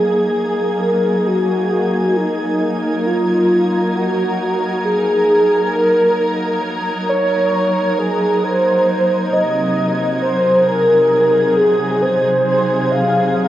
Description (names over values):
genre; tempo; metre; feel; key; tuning
ambient; 67 BPM; 4/4; straight; Gb lydian; A4 = 441 Hz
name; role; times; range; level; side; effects
warm velvety synth lead; melody; 0.0-13.5 s; Eb4 to F5; -15 LUFS; equal; chorus, cassette tape, plate reverb, analog delay
dark studio string section; sustained chords; 0.0-13.5 s; C3 to Bb4; -18 LUFS; equal; plate reverb
organ-like drone; drone; 2.4-13.5 s; Gb3; -31 LUFS; right 3 dB; none
warm studio violin section; texture; 0.0-13.5 s; Ab6; -30 LUFS; right 4 dB; plate reverb
room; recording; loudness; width
wet studio reverb, RT60 0.6 s; home recording on cassette; -14 LUFS; side -13 dB against mid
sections
0.0-13.5 A section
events
none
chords
0.0 Gb69; 8.4 Ab7